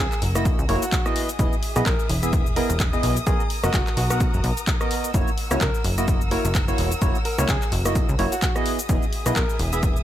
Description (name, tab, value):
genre	piano house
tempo	128 BPM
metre	4/4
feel	swing 57% on 16ths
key	F# mixolydian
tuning	A4 = 437 Hz
part	bright concert grand piano	melody	0.0-9.6 s	F#4 to A#4	-32 LUFS	equal	ping-pong delay
part	rich studio violin section	sustained chords	0.0-10.0 s	G#4 to E6	-33 LUFS	equal	sidechain pumping
part	plucky analog bass	bass	0.0-10.0 s	E1 to C#2	-25 LUFS	equal	sidechain pumping
part	house drum kit	drums	0.1-10.0 s	handclaps, hi-hat, rim click, shaker	-29 LUFS	left 1 dB	none
part	percussive organ stab	riff	0.4-10.0 s	A#3 to F#5	-27 LUFS	right 1 dB	lush chorus, sidechain pumping
part	electronic kick drum	drums	0.5-9.9 s	none	-23 LUFS	equal	none
room	digital ambience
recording	none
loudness	-20 LUFS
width	side -12 dB against mid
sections	0.0-10.0 A section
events	none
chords	0.0 F#7; 1.2 Emaj7; 3.3 Bmaj7; 5.1 F#7; 8.7 Emaj7